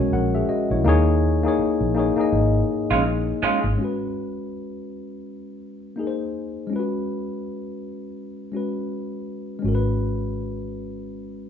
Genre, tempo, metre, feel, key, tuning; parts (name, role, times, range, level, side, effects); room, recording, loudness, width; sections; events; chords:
R&B, neo-soul; 82 BPM; 4/4; swing 59% on 16ths; G# minor; A4 = 440 Hz
tine electric piano; accompaniment; 0.0-11.5 s; G#3 to F#5; -24 LUFS; left 3 dB
vintage muted fingered electric bass; bass; 0.0-3.8, 9.6-11.5 s; G#1 to D#2; -23 LUFS; right 1 dB
electric guitar through a small old amp; second line; 2.9-3.6 s; G#3 to E#4; -23 LUFS; right 5 dB; harmonic tremolo
moderate large studio reverb, RT60 1.1 s; band playing live in one room, nothing above 7.9 kHz; -21 LUFS; side -8 dB against mid
0.0-3.8 A section; 3.8-11.5 B section
0.0 F#9; 0.8 D#7sus4; 3.8 G#m7; 6.0 G#add9; 6.7 C#7sus4